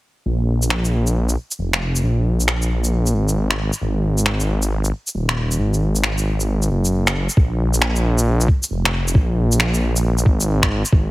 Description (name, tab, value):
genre	future garage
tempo	135 BPM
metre	4/4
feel	swing 64% on 16ths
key	unclear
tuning	A4 = 440 Hz
part	swelling detuned saw bass	bass	0.3-11.1 s	Eb1 to Bb1	-18 LUFS	equal	sidechain pumping
part	electronic shaker and finger snaps	drums	0.6-10.9 s	none	-21 LUFS	equal	none
part	electronic kick drum	drums	7.4-11.0 s	none	-14 LUFS	equal	none
room	little or no reverb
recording	heavily compressed radio sound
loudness	-16 LUFS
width	side -18 dB against mid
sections	0.3-7.4 A section; 7.4-11.1 B section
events	none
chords	none